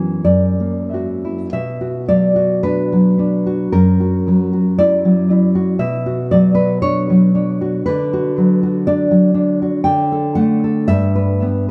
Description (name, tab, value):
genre	romantic piece for solo classical guitar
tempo	42-61 BPM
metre	2/4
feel	rubato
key	B minor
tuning	A4 = 440 Hz
part	nylon-string guitar	solo	0.0-11.7 s	F#2 to G5	-16 LUFS	equal	tape echo
room	moderate concert hall reverb, RT60 2.2 s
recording	close, detailed microphones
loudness	-16 LUFS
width	mono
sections	0.0-1.5 A section; 1.5-11.7 B section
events	none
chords	0.2 F#; 1.5 Bm; 3.7 F#7; 5.8 Bm; 7.9 Bm/D; 9.8 D; 10.9 Em/G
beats	0.23 | 1.52 2.63 | 3.71 4.78 | 5.79 6.80 | 7.85 8.86 | 9.85 10.89